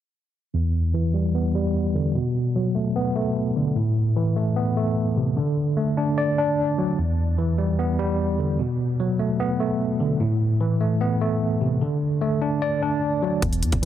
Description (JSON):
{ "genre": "hip hop, trap", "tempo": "149 BPM", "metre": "4/4", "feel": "half-time", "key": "E minor", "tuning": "A4 = 439 Hz", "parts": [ { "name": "tine electric piano", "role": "accompaniment", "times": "0.5-13.9 s", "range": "E2 to D5", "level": "-21 LUFS", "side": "equal", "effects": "overdrive, medium stereo tremolo, low-pass filter" }, { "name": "warm 808-style bass", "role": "bass", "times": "13.4-13.9 s", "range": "E1 to E2", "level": "-24 LUFS", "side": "equal", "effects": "none" }, { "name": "trap drum kit", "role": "drums", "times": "13.4-13.9 s", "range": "hi-hat, kick drum", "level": "-24 LUFS", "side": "equal", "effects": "none" } ], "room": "light reverb", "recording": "dense, heavily limited modern master", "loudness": "-21 LUFS", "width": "side -11 dB against mid", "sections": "0.5-13.4 A section", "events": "filter sweep on tine electric piano 0.5-13.4", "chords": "0.5 Em7; 2.1 Bm7; 3.8 Amadd9; 5.4 D; 7.0 Em7; 8.6 Bm7; 10.2 Amadd9; 11.8 D", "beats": "| 0.54 0.94 1.34 1.75 | 2.15 2.55 2.95 3.36 | 3.76 4.16 4.57 4.97 | 5.37 5.77 6.18 6.58 | 6.98 7.38 7.79 8.19 | 8.59 8.99 9.40 9.80 | 10.20 10.61 11.01 11.41 | 11.81 12.22 12.62 13.02 | 13.42 13.83" }